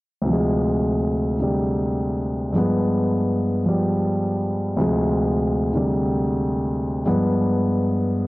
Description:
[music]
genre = solo jazz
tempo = 106 BPM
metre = 4/4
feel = swing 68% on 8ths, rubato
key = unclear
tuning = A4 = 440 Hz
[part]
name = warm grand piano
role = solo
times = 0.2-8.3 s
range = D2 to B3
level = -19 LUFS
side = equal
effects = none
[sound]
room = moderate spring reverb, RT60 1.2 s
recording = worn, warbling old tape, cassette tape, warbly pitch drift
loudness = -19 LUFS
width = side -20 dB against mid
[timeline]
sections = 0.3-8.3 A section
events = none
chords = 0.3 Dm7b5; 2.6 G7b9; 4.8 Dm7b5; 7.1 G7b9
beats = | 0.28 0.85 1.42 1.99 | 2.56 3.12 3.67 4.23 | 4.79 5.36 5.92 6.49 | 7.05 7.63 8.21

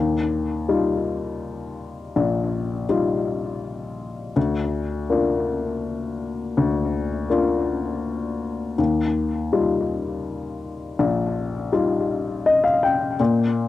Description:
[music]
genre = folk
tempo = 82 BPM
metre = 3/4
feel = straight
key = Eb major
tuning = A4 = 438 Hz
[part]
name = warm baby grand piano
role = solo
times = 0.0-13.7 s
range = Bb1 to G5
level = -21 LUFS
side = left 3 dB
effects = analog delay
[sound]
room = wet booth ambience, RT60 0.2 s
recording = home recording on cassette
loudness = -20 LUFS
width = side -14 dB against mid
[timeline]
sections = 0.0-13.7 A section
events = none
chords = 0.0 Ebadd9; 4.4 Bb/D; 8.8 Ebadd9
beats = 0.68 1.42 | 2.15 2.89 3.63 | 4.36 5.10 5.84 | 6.57 7.31 8.05 | 8.79 9.53 10.26 | 11.00 11.73 12.46 | 13.19

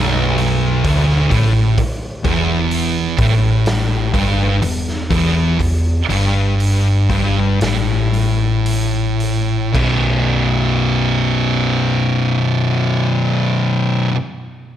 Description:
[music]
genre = stoner and doom metal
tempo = 54-64 BPM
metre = 4/4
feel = straight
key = B minor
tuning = A4 = 441 Hz
[part]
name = thick fuzz guitar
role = riff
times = 0.0-14.1 s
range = B1 to B2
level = -18 LUFS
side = left 5 dB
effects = distortion
[part]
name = thick fuzz guitar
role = riff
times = 0.0-14.1 s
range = B1 to B2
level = -18 LUFS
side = right 6 dB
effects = distortion
[part]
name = hollow-body short-scale picked electric bass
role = bass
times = 0.0-14.1 s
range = B0 to A1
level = -22 LUFS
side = equal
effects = overdrive
[part]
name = raw garage drum kit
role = drums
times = 0.4-10.0 s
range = crash cymbal, hi-hat, kick drum, snare drum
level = -23 LUFS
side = equal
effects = none
[sound]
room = moderate concert hall reverb, RT60 2.2 s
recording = none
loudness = -14 LUFS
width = side -11 dB against mid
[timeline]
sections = 0.0-9.7 A section; 9.7-14.2 B section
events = slowing down 1.8-9.7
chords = 0.0 Bm; 1.8 Emadd11; 9.7 B5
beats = 0.84 | 1.78 2.71 3.66 4.62 | 5.59 6.59 7.61 8.66 | 9.75 10.85 11.96 13.06

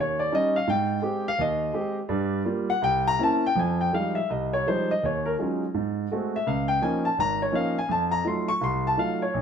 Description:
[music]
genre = solo jazz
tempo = 167 BPM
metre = 4/4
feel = swing 64% on 8ths, rubato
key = unclear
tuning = A4 = 440 Hz
[part]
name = warm concert grand piano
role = solo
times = 0.0-9.4 s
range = Ab1 to Db6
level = -23 LUFS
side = equal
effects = none
[sound]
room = moderate stone room reverb, RT60 1.3 s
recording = band playing live in one room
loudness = -23 LUFS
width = side -7 dB against mid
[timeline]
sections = 0.0-3.6 A section; 3.6-9.4 A section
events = grand piano solo 0.0-9.4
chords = 0.0 Eb7; 0.7 Abmaj7; 2.1 Gm7; 2.8 C7b9; 3.6 Fm9; 5.0 Ebm11; 5.8 Ab7b9; 6.5 Db69; 7.9 F7b9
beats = 0.32 | 0.68 1.03 1.39 1.74 | 2.10 2.46 2.82 3.20 | 3.57 3.93 4.30 4.67 | 5.03 5.39 5.75 6.11 | 6.47 6.82 7.17 7.53 | 7.88 8.24 8.60 8.97 | 9.34

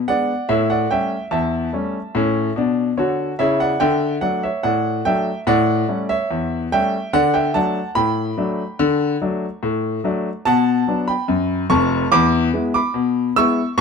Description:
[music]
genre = ragtime piano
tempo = 72 BPM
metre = 2/4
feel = straight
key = D major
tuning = A4 = 440 Hz
[part]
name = clear grand piano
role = solo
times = 0.0-13.8 s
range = F1 to E6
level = -17 LUFS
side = left 1 dB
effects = none
[sound]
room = light reverb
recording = close, detailed microphones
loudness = -17 LUFS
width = side -5 dB against mid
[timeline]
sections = 0.0-13.8 A section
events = none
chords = 0.5 A7; 3.8 D; 5.5 A7; 7.1 D; 10.5 Bm; 12.1 E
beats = | 0.49 1.32 | 2.15 2.98 | 3.81 4.64 | 5.47 6.30 | 7.13 7.97 | 8.80 9.62 | 10.46 11.29 | 12.11 12.94 | 13.77

